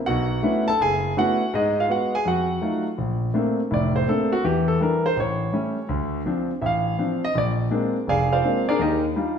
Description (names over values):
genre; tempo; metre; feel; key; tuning
solo jazz; 165 BPM; 4/4; swing 65% on 8ths; Bb major; A4 = 440 Hz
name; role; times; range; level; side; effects
warm concert grand piano; solo; 0.1-9.4 s; F1 to A5; -20 LUFS; equal; none
room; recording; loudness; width
wet stone room reverb, RT60 1.3 s; band playing live in one room; -20 LUFS; side -7 dB against mid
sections
0.0-3.0 A section; 3.0-9.4 B section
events
grand piano solo 3.0-9.4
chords
0.1 Bm11; 1.5 G#m7; 2.2 F7b9; 3.0 Bbmaj9; 4.4 Em7b5; 5.2 A7; 5.9 Dm7; 7.3 Bb9; 8.8 Ebmaj9